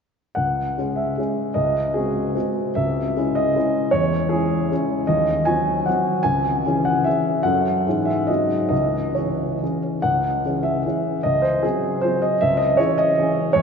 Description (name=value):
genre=classical, romantic triple-time dance for piano with dotted rhythms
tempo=127-168 BPM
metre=3/4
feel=rubato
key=C# minor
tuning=A4 = 440 Hz
part: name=warm concert grand piano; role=solo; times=0.3-13.6 s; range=C#2 to G#5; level=-18 LUFS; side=equal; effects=none
room=wet cathedral reverb, RT60 5.6 s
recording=in a vast, echoing space, nothing above 7.6 kHz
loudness=-18 LUFS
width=side -6 dB against mid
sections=0.4-10.0 A section; 10.0-13.6 A section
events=none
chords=0.4 C#m; 1.6 G#7/C#; 2.8 C#m; 3.9 C#m/E; 5.1 Cdim/Eb; 6.3 C#m; 7.4 F#m; 7.9 C#m/G#; 8.3 G#7; 8.7 C#m; 11.2 G#7/C#; 12.4 C#m